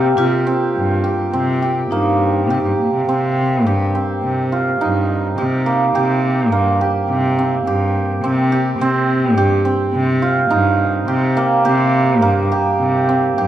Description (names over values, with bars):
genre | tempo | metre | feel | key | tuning
contemporary instrumental, chamber music in an uneven meter | 105 BPM | 5/4 | straight | C minor | A4 = 439 Hz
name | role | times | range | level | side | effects
vibraphone with hard mallets | second line | 0.0-2.8 s | Eb4 to G4 | -21 LUFS | left 3 dB | none
hammered dulcimer | arpeggios | 0.0-13.5 s | Bb3 to Bb4 | -17 LUFS | right 2 dB | none
rich cello | bass | 0.0-13.5 s | G2 to C3 | -18 LUFS | equal | none
room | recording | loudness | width
moderate recital hall reverb, RT60 1.4 s | none | -14 LUFS | side -11 dB against mid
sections
0.0-3.1 A section; 3.1-13.5 B section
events
none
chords
0.0 Cm7